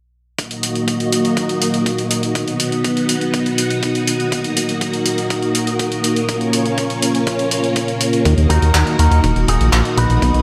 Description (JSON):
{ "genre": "italo disco", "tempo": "122 BPM", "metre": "4/4", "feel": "straight", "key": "Eb minor", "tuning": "A4 = 438 Hz", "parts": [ { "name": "string machine, full ensemble", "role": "sustained chords", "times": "0.4-10.4 s", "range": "Bb3 to Eb5", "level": "-20 LUFS", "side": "equal", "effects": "ensemble chorus" }, { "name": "dusty soul sampler-style drum kit", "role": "drums", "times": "0.4-10.4 s", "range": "handclaps, hi-hat", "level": "-25 LUFS", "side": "equal", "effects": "none" }, { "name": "electronic kick drum", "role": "drums", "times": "0.4-10.3 s", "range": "none", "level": "-28 LUFS", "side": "equal", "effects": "high-pass filter on kick, high-pass filter on room" }, { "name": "chorused synth bass", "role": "bass", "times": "8.3-10.4 s", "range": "Eb1 to Eb2", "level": "-16 LUFS", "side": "equal", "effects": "tube saturation" }, { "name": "electric guitar with an envelope filter", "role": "stabs", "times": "8.5-10.4 s", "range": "Cb3 to Cb5", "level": "-22 LUFS", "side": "equal", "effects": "spring reverb, digital delay" } ], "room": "moderate lush hall reverb, RT60 2.1 s", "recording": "faint mains hum", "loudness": "-17 LUFS", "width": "mono", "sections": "0.4-10.4 A section", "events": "none", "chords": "0.4 Ebm; 2.4 B; 4.3 Ebm; 6.3 Bbm; 8.3 Ebm" }